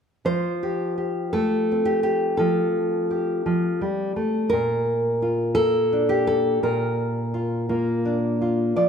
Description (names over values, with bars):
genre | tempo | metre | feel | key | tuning
folk, solo fingerstyle acoustic guitar | 56 BPM (dotted quarters) | 6/8 | rubato | F major | A4 = 440 Hz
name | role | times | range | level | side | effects
nylon-string guitar | solo | 0.2-8.9 s | Bb2 to D5 | -20 LUFS | equal | none
room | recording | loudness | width
moderate scoring stage reverb, RT60 1.9 s | none | -20 LUFS | side -7 dB against mid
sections
0.3-8.9 A section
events
none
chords
0.3 Fadd9; 4.5 Bb